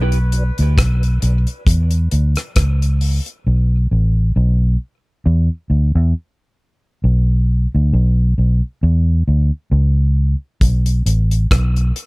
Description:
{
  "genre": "dub reggae",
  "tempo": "67 BPM",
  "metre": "4/4",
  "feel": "swing 56% on 16ths",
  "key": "unclear",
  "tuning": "A4 = 438 Hz",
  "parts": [
    { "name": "vintage muted fingered electric bass", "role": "bass", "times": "0.0-11.9 s", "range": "A1 to E2", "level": "-14 LUFS", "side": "equal", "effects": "none" },
    { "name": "mellow tonewheel organ", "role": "accompaniment", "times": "0.1-3.8 s", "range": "E2 to E4", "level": "-39 LUFS", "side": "left 1 dB", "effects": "chorus vibrato, slow rotary speaker, high-pass filter, low-pass filter, tape echo" },
    { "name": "damped 70s drum kit", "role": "drums", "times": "0.1-3.4, 10.6-12.1 s", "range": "hi-hat, kick drum, rim click", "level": "-18 LUFS", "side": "equal", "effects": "none" }
  ],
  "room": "studio ambience",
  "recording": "none",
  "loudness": "-14 LUFS",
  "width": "side -25 dB against mid",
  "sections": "0.0-12.1 A section",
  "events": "part muted 3.5-10.6",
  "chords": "0.0 Bm; 1.7 Em; 3.5 Asus2; 5.2 Dsus2; 7.0 N.C.; 8.8 C#m; 10.6 Asus2",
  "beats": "0.77 1.67 2.56 | 3.46 4.35 5.25 6.14 | 7.03 7.93 8.82 9.72 | 10.61 11.51"
}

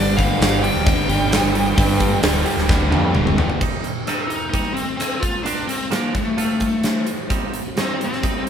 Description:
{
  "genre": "quiet-loud alternative rock",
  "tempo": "130 BPM",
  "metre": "4/4",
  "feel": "straight",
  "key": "C dorian",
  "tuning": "A4 = 445 Hz",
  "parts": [
    { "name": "dark smooth lead guitar", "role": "melody", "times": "0.0-8.5 s", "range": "A3 to G5", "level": "-23 LUFS", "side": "left 2 dB", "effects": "overdrive" },
    { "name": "crunchy overdriven guitar", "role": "riff", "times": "0.0-3.6 s", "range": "G2 to G3", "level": "-20 LUFS", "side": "right 1 dB", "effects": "none" },
    { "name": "growling picked electric bass", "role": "bass", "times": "0.0-3.6 s", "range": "C1 to G2", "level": "-22 LUFS", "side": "equal", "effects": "overdrive" },
    { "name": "huge arena drum kit", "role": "drums", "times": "0.2-8.5 s", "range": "crash cymbal, hi-hat, kick drum, rim click, snare drum, toms", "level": "-20 LUFS", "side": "equal", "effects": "none" },
    { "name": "twangy electric guitar", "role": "arpeggios", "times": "3.6-8.5 s", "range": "G2 to Bb4", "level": "-28 LUFS", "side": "right 6 dB", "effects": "none" }
  ],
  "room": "moderate large studio reverb, RT60 1.0 s",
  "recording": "band playing live in one room",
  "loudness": "-17 LUFS",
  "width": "side -8 dB against mid",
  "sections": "0.0-3.6 A section; 3.6-8.5 B section",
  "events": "drum fill 2.7-3.6",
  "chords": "0.0 G5; 3.6 Cm; 5.2 Bb; 6.1 F; 7.3 Cm",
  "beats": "0.40 0.86 1.31 | 1.77 2.23 2.69 3.14 | 3.60 4.06 4.53 4.99 | 5.45 5.91 6.38 6.84 | 7.30 7.76 8.23"
}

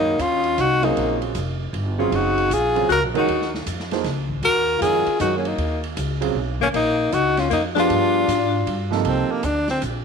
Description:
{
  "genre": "modal jazz",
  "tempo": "156 BPM",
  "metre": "3/4",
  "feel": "swing 65% on 8ths",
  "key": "Eb dorian",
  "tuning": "A4 = 440 Hz",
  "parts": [
    { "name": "breathy tenor saxophone", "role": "melody", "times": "0.0-9.8 s", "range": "Bb3 to Bb4", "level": "-21 LUFS", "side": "equal", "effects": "none" },
    { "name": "clear alto saxophone", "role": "second line", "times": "0.0-8.9 s", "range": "Bb3 to Gb4", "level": "-24 LUFS", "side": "left 10 dB", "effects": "none" },
    { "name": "clear grand piano", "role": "accompaniment", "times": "0.0-9.4 s", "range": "C3 to F5", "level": "-25 LUFS", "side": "right 13 dB", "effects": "none" },
    { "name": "upright bass", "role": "bass", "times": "0.0-10.0 s", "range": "F1 to Ab2", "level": "-26 LUFS", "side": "equal", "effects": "none" },
    { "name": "open jazz drum kit", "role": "drums", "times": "0.2-9.9 s", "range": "hi-hat, kick drum, ride cymbal, snare drum", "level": "-32 LUFS", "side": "right 4 dB", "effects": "none" }
  ],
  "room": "moderate echo chamber reverb, RT60 1.7 s, studio reverb",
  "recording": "1960s-style stereo with parts hard left and right",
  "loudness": "-18 LUFS",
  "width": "side -6 dB against mid",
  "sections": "0.0-9.0 A section",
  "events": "none",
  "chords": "0.0 Ebm9; 7.9 G7b9; 9.0 Cm9",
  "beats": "0.19 0.58 | 0.96 1.35 1.74 | 2.12 2.51 2.89 | 3.28 3.66 4.05 | 4.43 4.82 5.20 | 5.59 5.97 6.36 | 6.74 7.12 7.51 | 7.89 8.28 8.66 | 9.05 9.43 9.82"
}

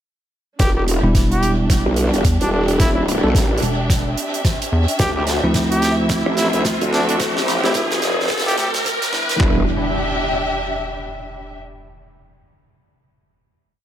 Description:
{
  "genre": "glitch hop",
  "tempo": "109 BPM",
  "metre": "4/4",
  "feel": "swing 60% on 16ths",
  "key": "E phrygian",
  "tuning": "A4 = 439 Hz",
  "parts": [
    { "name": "clear trumpet", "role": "melody", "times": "0.6-8.7 s", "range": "D4 to G4", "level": "-25 LUFS", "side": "equal", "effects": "vintage 12-bit sampler grit, dub echo" },
    { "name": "growl bass", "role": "bass", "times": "0.6-9.7 s", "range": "E1 to D2", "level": "-20 LUFS", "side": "equal", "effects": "chorus" },
    { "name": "boom bap sampler-style drum kit", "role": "drums", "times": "0.6-9.6 s", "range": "handclaps, kick drum, toms", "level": "-18 LUFS", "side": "equal", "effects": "overdrive" },
    { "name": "huge arena drum kit", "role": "drums", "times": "0.6-9.4 s", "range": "hi-hat, rim click, snare drum", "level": "-25 LUFS", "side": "right 2 dB", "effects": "high-pass filter on hats, high-pass filter on snare, high-pass filter on room, dub echo" },
    { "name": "riser and impact", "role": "sound effects", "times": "3.8-11.6 s", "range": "none", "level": "-26 LUFS", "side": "equal", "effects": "none" },
    { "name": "warm symphonic string section", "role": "texture", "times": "0.6-11.6 s", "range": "F3 to E5", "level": "-25 LUFS", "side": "right 1 dB", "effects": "sidechain pumping" },
    { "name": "bell-like tine electric piano", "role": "stabs", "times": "1.0-9.6 s", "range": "F3 to A4", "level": "-23 LUFS", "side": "right 1 dB", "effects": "sidechain pumping, low-pass filter, dub echo" },
    { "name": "rubbery square bass", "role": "bass", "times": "1.0-9.0 s", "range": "E1 to E2", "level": "-20 LUFS", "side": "equal", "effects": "none" }
  ],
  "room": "light reverb, studio ambience",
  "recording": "echo-heavy mix, high-pass filter",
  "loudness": "-16 LUFS",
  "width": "side -10 dB against mid",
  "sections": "0.6-9.4 build; 9.4-11.6 final chord",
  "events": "build-up 0.6-9.4; drum fill 0.6-9.4; filter sweep on tine electric piano 0.6-9.4; filter sweep 0.6-9.4; riser 3.8-9.4",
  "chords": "0.6 Em7; 5.0 Dm9; 9.4 Em7",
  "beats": "| 0.60 1.15 1.70 2.25 | 2.80 3.35 3.90 4.45 | 5.00 5.55 6.10 6.65 | 7.20 7.75 8.30 8.85 | 9.40 9.96 10.51 11.06"
}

